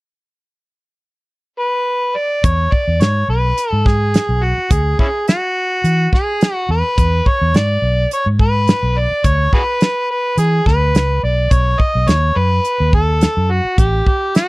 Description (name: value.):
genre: straight-eighth soul blues.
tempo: 106 BPM.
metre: 4/4.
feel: swing 55% on 16ths.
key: E mixolydian.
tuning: A4 = 439 Hz.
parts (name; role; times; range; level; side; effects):
overdriven harmonica; melody; 1.6-14.5 s; C#4 to D#5; -17 LUFS; equal; slapback echo.
vintage muted fingered electric bass; bass; 2.4-14.0 s; A1 to E3; -16 LUFS; equal; none.
damped 70s drum kit; drums; 2.4-14.5 s; hi-hat, kick drum, snare drum; -14 LUFS; equal; none.
room: little or no reverb.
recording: dry, close 1970s-style studio recording.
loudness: -13 LUFS.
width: side -21 dB against mid.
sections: 0.2-2.4 A section; 2.4-14.5 B section.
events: none.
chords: 0.2 N.C.; 2.4 E7; 11.5 B7; 13.8 Gsus2/A.